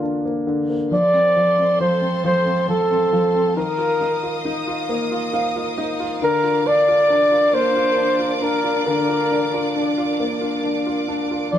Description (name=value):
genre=pop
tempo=45 BPM (dotted quarters)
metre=6/8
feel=straight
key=Bb major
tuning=A4 = 441 Hz
part: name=breathy flugelhorn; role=melody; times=0.0-11.6 s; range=F4 to D5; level=-17 LUFS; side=equal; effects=none
part: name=warm concert grand piano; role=accompaniment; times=0.0-11.6 s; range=D3 to F5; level=-22 LUFS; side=left 1 dB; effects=none
part: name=rich studio string section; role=sustained chords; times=0.9-11.6 s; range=D4 to Eb6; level=-26 LUFS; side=equal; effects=none
room=moderate studio reverb, RT60 0.7 s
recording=band playing live in one room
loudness=-17 LUFS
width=side -10 dB against mid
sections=0.0-11.6 A section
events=grand piano fill 4.9-6.2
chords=0.0 Bb/D; 0.9 F; 3.6 Ebsus2; 6.2 Bb/D